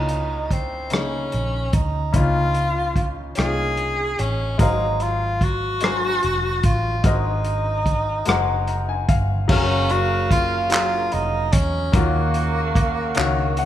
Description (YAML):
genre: slow six-eight R&B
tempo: 49 BPM (dotted quarters)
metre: 6/8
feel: straight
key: unclear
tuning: A4 = 437 Hz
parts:
  - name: breathy tenor saxophone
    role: melody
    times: 0.0-13.7 s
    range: Bb3 to Ab4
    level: -24 LUFS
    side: equal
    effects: none
  - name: clear baby grand piano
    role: accompaniment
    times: 0.0-13.7 s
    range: Db3 to Bb5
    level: -26 LUFS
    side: left 5 dB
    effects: none
  - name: vintage muted fingered electric bass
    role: bass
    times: 0.0-13.7 s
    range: F1 to Fb2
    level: -24 LUFS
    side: equal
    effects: none
  - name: warm soul drum kit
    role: drums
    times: 0.1-13.7 s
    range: crash cymbal, handclaps, hi-hat, kick drum, rim click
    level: -22 LUFS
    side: equal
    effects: none
  - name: clear horn section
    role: stabs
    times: 9.5-13.7 s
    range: Db3 to F5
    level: -27 LUFS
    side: right 4 dB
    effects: none
room: moderate recital hall reverb, RT60 1.7 s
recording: recorded in a church or concert hall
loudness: -18 LUFS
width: side -12 dB against mid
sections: 0.0-9.5 A section; 9.5-13.7 B section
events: grand piano fill 8.3-9.5, 13.2-13.7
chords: 0.0 Db69; 4.6 Ab13; 9.5 Gbmaj9; 11.9 Ebm9